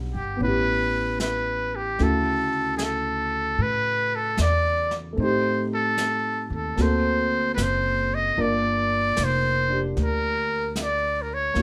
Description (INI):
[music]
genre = jazz ballad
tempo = 76 BPM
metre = 4/4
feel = swing 66% on 8ths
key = unclear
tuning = A4 = 440 Hz
[part]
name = warm upright piano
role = accompaniment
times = 0.0-11.6 s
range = C#3 to Gb5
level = -31 LUFS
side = equal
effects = none
[part]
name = upright bass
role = bass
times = 0.0-11.6 s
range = F1 to A2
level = -31 LUFS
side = equal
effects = none
[part]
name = trumpet with metal mute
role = melody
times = 0.1-11.6 s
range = G4 to Eb5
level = -26 LUFS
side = equal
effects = none
[part]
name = vintage brush drum kit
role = drums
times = 0.4-11.6 s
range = brushed snare drum, hi-hat, snare drum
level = -36 LUFS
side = equal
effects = none
[sound]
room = moderate large studio reverb, RT60 0.8 s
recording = none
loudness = -24 LUFS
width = mono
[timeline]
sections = 0.0-11.6 A section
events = none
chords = 0.4 A9; 2.0 Dmaj9; 5.2 Am7b5; 6.8 D7b13; 8.4 Gm7